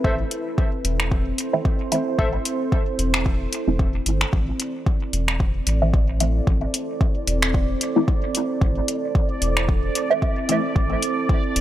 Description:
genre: dub techno.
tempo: 112 BPM.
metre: 4/4.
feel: swing 56% on 16ths.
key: A minor.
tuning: A4 = 440 Hz.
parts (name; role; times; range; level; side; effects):
deep dark ambient pad; sustained chords; 0.0-11.6 s; C4 to C5; -28 LUFS; right 2 dB; chorus, built-in reverb, sidechain pumping.
warbly lo-fi synth keys; riff; 0.0-2.3 s; A4 to E5; -30 LUFS; left 1 dB; chorus, vintage 12-bit sampler grit, sidechain pumping, dub echo.
round analog bass; bass; 0.0-11.6 s; E1 to A1; -24 LUFS; equal; sidechain pumping.
electronic kick drum; drums; 0.0-11.4 s; none; -21 LUFS; equal; overdrive.
deep house drum kit; drums; 0.3-11.6 s; finger snaps, hi-hat; -24 LUFS; left 1 dB; overdrive, dub echo.
filtered dub chord stab; stabs; 1.5-10.6 s; E3 to E4; -24 LUFS; right 1 dB; phaser, sidechain pumping, dub echo.
bubbling stepped-filter texture; texture; 4.3-11.6 s; D5; -30 LUFS; right 4 dB; chorus, built-in reverb, sidechain pumping.
room: light reverb.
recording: none.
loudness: -19 LUFS.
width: side -12 dB against mid.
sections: 0.0-4.3 A section; 4.3-11.6 A section.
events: filter sweep on synth stab 4.3-11.6.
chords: 0.0 Am.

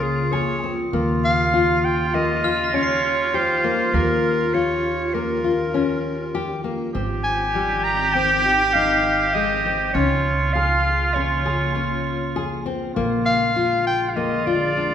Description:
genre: contemporary instrumental, chamber music in an uneven meter.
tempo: 100 BPM.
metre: 5/4.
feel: straight.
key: Eb mixolydian.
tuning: A4 = 440 Hz.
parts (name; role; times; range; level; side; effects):
bright clarinet; melody; 0.0-14.9 s; Ab4 to Bb5; -23 LUFS; left 1 dB; none.
trumpet with straight mute; second line; 0.0-14.9 s; F4 to G4; -23 LUFS; right 3 dB; none.
soft additive organ-like pad; sustained chords; 0.0-14.9 s; Db3 to G4; -28 LUFS; equal; ensemble chorus, built-in reverb.
nylon-string guitar; arpeggios; 0.0-14.9 s; G3 to Ab4; -25 LUFS; left 5 dB; none.
upright bass; bass; 0.0-14.9 s; Ab1 to Eb2; -28 LUFS; right 2 dB; none.
glockenspiel with hard plastic mallets; texture; 0.0-3.4 s; F6 to C7; -32 LUFS; left 4 dB; none.
room: wet recital hall reverb, RT60 1.5 s.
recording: minimal, uncompressed stereo recording.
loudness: -18 LUFS.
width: side -9 dB against mid.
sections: 0.0-14.9 A section.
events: none.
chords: 0.0 Db6; 0.9 Eb9; 6.9 Abmaj7; 10.0 Db6; 13.0 Bb7.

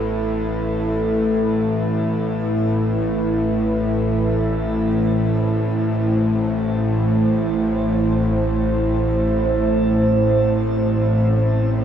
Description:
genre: dark ambient drone.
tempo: free time.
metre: none.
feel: none.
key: A minor.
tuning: A4 = 440 Hz.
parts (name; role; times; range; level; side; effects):
deep dark ambient pad; sustained chords; 0.0-11.8 s; A3 to C5; -20 LUFS; right 1 dB; chorus, built-in reverb, shimmer reverb.
bowed-like drone; drone; 0.0-11.8 s; A1 to A2; -20 LUFS; equal; built-in reverb.
quartz singing bowl; texture; 0.0-11.8 s; A4; -31 LUFS; right 1 dB; shimmer reverb.
room: wet huge ambient reverb, RT60 7.8 s.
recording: none.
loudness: -17 LUFS.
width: side -9 dB against mid.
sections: 0.0-11.8 A section.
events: none.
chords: 0.0 A5.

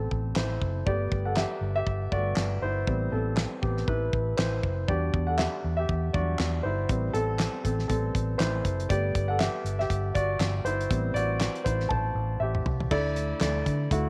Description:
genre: piano-driven pop.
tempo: 120 BPM.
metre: 4/4.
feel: swing 56% on 16ths.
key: unclear.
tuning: A4 = 436 Hz.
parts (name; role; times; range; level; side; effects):
warm concert grand piano; accompaniment; 0.0-14.1 s; D3 to A5; -32 LUFS; equal; none.
vintage muted fingered electric bass; bass; 0.0-14.1 s; F#1 to D3; -32 LUFS; equal; none.
damped 70s drum kit; drums; 0.1-14.0 s; crash cymbal, handclaps, hi-hat, kick drum, snare drum, toms; -33 LUFS; equal; none.
room: light reverb, small room ambience.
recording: none.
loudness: -28 LUFS.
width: mono.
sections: 0.0-12.9 A section; 12.9-14.1 B section.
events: grand piano solo 0.0-12.9; drum fill 11.9-12.9.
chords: 0.0 Am7; 0.9 Gadd9; 2.9 Am7; 4.9 Em7; 6.9 Am7; 8.9 Gadd9; 10.9 Am7; 12.9 Dsus2.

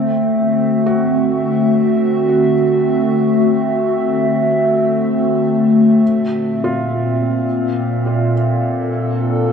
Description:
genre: ambient.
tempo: free time.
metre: none.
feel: none.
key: unclear.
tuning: A4 = 443 Hz.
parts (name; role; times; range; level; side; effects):
warbly tape-like pad; sustained chords; 0.0-9.5 s; Bb2 to E5; -13 LUFS; equal; chorus, built-in reverb, phaser, shimmer reverb.
felt-muted upright piano; arpeggios; 0.0-9.5 s; F4 to F#4; -28 LUFS; equal; diffuse ambient delay, shimmer reverb.
room: wet lush hall reverb, RT60 2.5 s.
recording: dark, warm production.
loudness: -13 LUFS.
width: side -6 dB against mid.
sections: 0.0-9.5 A section.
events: fade-in on felt piano 0.0-9.5.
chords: 0.0 D7; 6.0 Bbmaj7.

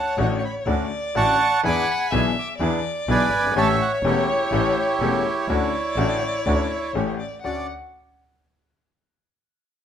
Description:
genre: tango.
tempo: 124 BPM.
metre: 4/4.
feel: rubato.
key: D major.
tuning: A4 = 440 Hz.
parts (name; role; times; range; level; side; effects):
bandoneon; melody; 0.0-7.7 s; E4 to D6; -22 LUFS; right 3 dB; none.
warm violin; second line; 0.0-7.7 s; C#5 to F#5; -27 LUFS; left 3 dB; none.
bright upright piano; accompaniment; 0.2-7.6 s; E1 to G#4; -26 LUFS; left 6 dB; none.
bandoneon; stabs; 0.2-7.6 s; A3 to A4; -32 LUFS; right 7 dB; none.
rich double bass; bass; 0.2-7.6 s; E1 to E2; -26 LUFS; right 1 dB; none.
room: light reverb.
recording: minimal, uncompressed stereo recording.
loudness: -19 LUFS.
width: side -8 dB against mid.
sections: 0.0-7.4 A section; 7.4-9.4 B section.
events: none.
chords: 0.0 Dmaj7; 1.6 E7; 3.6 A7; 5.5 Dmaj7; 6.9 A7; 7.4 Dmaj7.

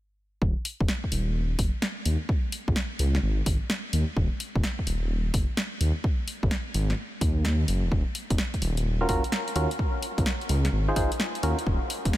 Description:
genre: UK garage, two-step garage.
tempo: 128 BPM.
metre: 4/4.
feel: swing 66% on 16ths.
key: unclear.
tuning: A4 = 438 Hz.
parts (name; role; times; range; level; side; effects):
dark detuned saw bass; bass; 0.4-12.1 s; Eb1 to Eb2; -26 LUFS; equal; sidechain pumping.
electronic kick drum; drums; 0.4-12.1 s; none; -27 LUFS; equal; overdrive.
punchy analog drum machine; drums; 0.7-12.2 s; hi-hat, snare drum; -32 LUFS; equal; none.
percussive organ stab; stabs; 9.0-11.6 s; Db4 to C5; -29 LUFS; equal; chorus, ping-pong delay.
room: light reverb, digital ambience.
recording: faint mains hum.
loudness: -24 LUFS.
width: side -15 dB against mid.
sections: 0.4-12.2 A section.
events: none.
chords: 0.4 N.C.; 2.3 Db5; 3.9 N.C.; 6.0 Ab5; 7.9 Ebm9; 9.8 Dbmaj9; 11.4 Ebm9.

